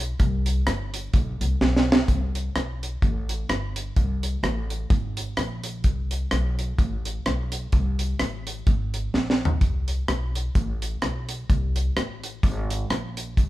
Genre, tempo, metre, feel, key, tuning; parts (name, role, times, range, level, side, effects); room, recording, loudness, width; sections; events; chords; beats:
ska; 128 BPM; 4/4; swing 57% on 8ths; A4 = 440 Hz
upright bass; bass; 0.0-13.5 s; G1 to C2; -26 LUFS; equal
deep reggae drum kit; drums; 0.2-13.5 s; hi-hat, kick drum, rim click, snare drum, toms; -23 LUFS; equal
light reverb; band playing live in one room; -22 LUFS; side -16 dB against mid
0.0-2.1 A section; 2.1-13.5 B section
drum fill 1.6-2.1, 9.1-9.6
| 0.20 0.67 1.14 1.61 | 2.08 2.55 3.02 3.49 | 3.96 4.43 4.91 5.38 | 5.85 6.32 6.79 7.26 | 7.73 8.20 8.67 9.14 | 9.61 10.08 10.55 11.02 | 11.49 11.96 12.43 12.90 | 13.37